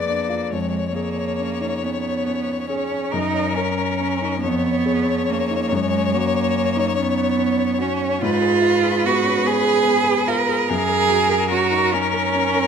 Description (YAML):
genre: classical, slow romantic movement for piano trio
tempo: 45-51 BPM (dotted quarters)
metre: 6/8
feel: rubato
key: F# major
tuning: A4 = 441 Hz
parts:
  - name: rich violin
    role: melody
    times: 0.0-12.7 s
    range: A#4 to D5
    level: -24 LUFS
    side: left 8 dB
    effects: none
  - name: warm cello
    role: second line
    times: 0.0-12.7 s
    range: G#3 to A#4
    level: -20 LUFS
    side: right 6 dB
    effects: none
  - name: warm concert grand piano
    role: accompaniment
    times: 0.0-12.7 s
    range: F2 to C#5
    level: -24 LUFS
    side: left 3 dB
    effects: none
room: moderate recital hall reverb, RT60 1.6 s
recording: none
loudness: -18 LUFS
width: side -7 dB against mid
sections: 0.0-12.7 A section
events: none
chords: 0.0 Fdim7; 0.5 C#7/E#; 3.1 F#; 4.4 C#7/E#; 5.7 F#; 8.2 Fdim/Ab; 10.7 F#